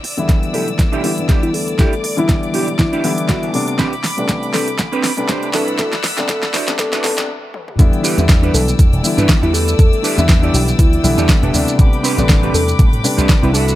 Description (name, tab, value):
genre	nu-disco, nu disco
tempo	120 BPM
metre	4/4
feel	swing 56% on 16ths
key	E minor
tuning	A4 = 440 Hz
part	rich chamber string section	sustained chords	0.0-13.8 s	D5 to E6	-26 LUFS	left 2 dB	sidechain pumping
part	mellow electric guitar	riff	0.0-13.8 s	C4 to D5	-22 LUFS	right 4 dB	analog chorus, low-pass filter
part	pop drum kit	drums	0.0-13.8 s	hi-hat, shaker, snare drum, toms	-20 LUFS	right 1 dB	none
part	dark concert grand piano	accompaniment	0.2-13.5 s	C3 to B4	-20 LUFS	left 2 dB	sidechain pumping
part	slap bass with an envelope filter	bass	0.2-13.7 s	E1 to A2	-20 LUFS	equal	high-pass filter
part	electronic kick drum	drums	0.3-13.4 s	none	-12 LUFS	equal	none
part	soft octave-layered synth lead	melody	0.5-13.8 s	E4 to A4	-23 LUFS	left 1 dB	chorus, digital delay
room	little or no reverb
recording	high-pass filter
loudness	-12 LUFS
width	side -15 dB against mid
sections	0.0-7.8 A section; 7.8-13.8 B section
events	build-up 0.0-7.8; drum fill 0.0-7.3, 7.5; filter sweep 0.0-7.8; stop 7.3-7.8; drop 7.8-13.8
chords	0.0 Em7; 3.8 Am11; 5.5 Cmaj9#11; 7.8 Em7; 11.8 Am11